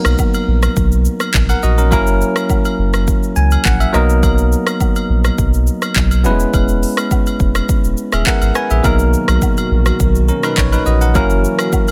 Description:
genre	afrobeats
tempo	104 BPM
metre	4/4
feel	straight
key	B major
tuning	A4 = 440 Hz
part	bell-like tine electric piano	accompaniment	0.0-11.9 s	F#3 to G#5	-20 LUFS	equal	none
part	afro-pop drum kit	drums	0.0-11.9 s	handclaps, hi-hat, kick drum, rim click, shaker	-19 LUFS	equal	none
part	warm sub bass	bass	0.1-11.5 s	D#1 to C#2	-17 LUFS	equal	none
part	agogo bells and woodblock	percussion	0.1-11.9 s	none	-29 LUFS	equal	none
part	hollow soft pad	sustained chords	9.2-11.9 s	B2 to A#4	-28 LUFS	equal	chorus
room	little or no reverb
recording	none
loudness	-14 LUFS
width	mono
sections	0.0-11.9 A section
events	tine electric piano fill 3.1-4.2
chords	0.0 Bmaj7; 1.9 F#7; 3.9 Bmaj7; 6.2 E6; 8.8 Bmaj7; 11.2 F#7

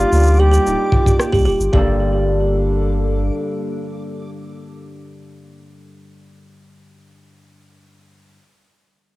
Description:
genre	folktronica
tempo	112 BPM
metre	4/4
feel	straight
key	G minor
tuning	A4 = 440 Hz
part	breathy flugelhorn	melody	0.0-1.2 s	F4 to G4	-20 LUFS	equal	vintage 12-bit sampler grit, cassette tape, analog delay
part	warbly tape-like pad	sustained chords	0.0-4.9 s	G3 to A4	-27 LUFS	equal	chorus, built-in reverb, cassette tape
part	Celtic harp	arpeggios	0.0-8.4 s	G2 to Bb4	-26 LUFS	left 2 dB	cassette tape, analog delay
part	warm sub bass	bass	0.0-3.3 s	D1 to D2	-17 LUFS	equal	none
part	backwards swelling texture	texture	0.0-1.7 s	D5 to D6	-38 LUFS	equal	built-in reverb, cassette tape
part	electronic shaker and rim click	drums	0.1-1.7 s	none	-27 LUFS	equal	studio reverb, cassette tape
part	music box	second line	0.4-2.0 s	G4	-22 LUFS	right 2 dB	vintage 12-bit sampler grit, cassette tape, analog delay
part	kick drum	drums	0.9-1.8 s	none	-16 LUFS	equal	studio reverb, cassette tape
room	little or no reverb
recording	home recording on cassette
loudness	-14 LUFS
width	side -19 dB against mid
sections	0.0-1.7 A section; 1.7-6.0 B section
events	none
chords	0.0 Ebadd9; 1.7 Gmadd9

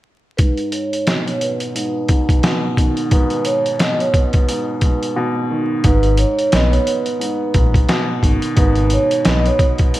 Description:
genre	hip hop, boom-bap hip-hop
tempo	88 BPM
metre	4/4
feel	swing 58% on 16ths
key	G# minor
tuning	A4 = 437 Hz
part	vibraphone with soft mallets	melody	0.4-10.0 s	B4 to D#5	-21 LUFS	right 1 dB	high-pass filter, low-pass filter, digital delay
part	dark upright piano	accompaniment	0.4-10.0 s	G#2 to B3	-20 LUFS	right 1 dB	high-pass filter, low-pass filter
part	trip hop sampler-style drum kit	drums	0.4-10.0 s	hi-hat, kick drum, snare drum	-16 LUFS	equal	gated reverb
part	smooth gliding synth bass	bass	5.8-9.5 s	G#1 to B1	-17 LUFS	equal	none
room	light reverb, studio reverb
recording	bright 1980s-style digital production, vinyl crackle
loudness	-14 LUFS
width	side -16 dB against mid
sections	0.4-5.8 A section; 5.8-10.0 B section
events	filter sweep 0.4-5.8; drums muted 5.2-5.8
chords	0.4 G#m

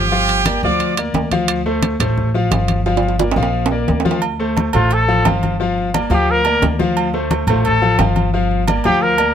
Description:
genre	latin, salsa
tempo	175 BPM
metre	4/4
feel	straight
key	D minor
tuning	A4 = 445 Hz
part	bright trumpet section	melody	0.0-1.0 s	G4 to D6	-18 LUFS	right 4 dB	none
part	bright concert grand piano	accompaniment	0.0-9.3 s	F3 to F5	-19 LUFS	left 3 dB	none
part	upright bass	bass	0.0-9.3 s	G1 to D2	-20 LUFS	equal	none
part	congas	percussion	0.1-9.3 s	none	-22 LUFS	left 2 dB	none
part	timbales and agogo bells	percussion	0.3-9.3 s	none	-22 LUFS	right 9 dB	none
part	warm trumpet	melody	4.7-9.3 s	F4 to Bb4	-17 LUFS	left 1 dB	none
room	little or no reverb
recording	close, detailed microphones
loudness	-14 LUFS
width	side -9 dB against mid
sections	0.0-4.2 A section; 4.2-9.3 B section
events	drum fill 2.9-4.2; trumpet solo 4.2-9.3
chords	0.1 Gm7; 1.5 Dm7; 2.9 Gm7; 4.2 Dm7; 5.6 Gm7; 7.0 Dm7; 8.3 Gm7

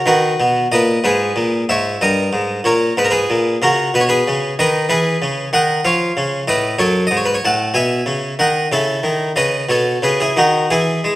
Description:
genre	classical, baroque-style suite movement for harpsichord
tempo	62 BPM (dotted quarters)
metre	6/8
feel	rubato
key	unclear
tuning	A4 = 437 Hz
part	harpsichord	solo	0.0-11.2 s	F#2 to A5	-14 LUFS	equal	none
room	moderate recital hall reverb, RT60 1.5 s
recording	none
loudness	-14 LUFS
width	side -16 dB against mid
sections	0.0-11.2 A section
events	none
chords	0.0 B; 1.0 G#m; 2.0 D#/G; 3.0 G#m; 4.9 E; 5.9 C#7; 6.8 F#m; 7.8 B; 8.7 A/C#; 9.7 B

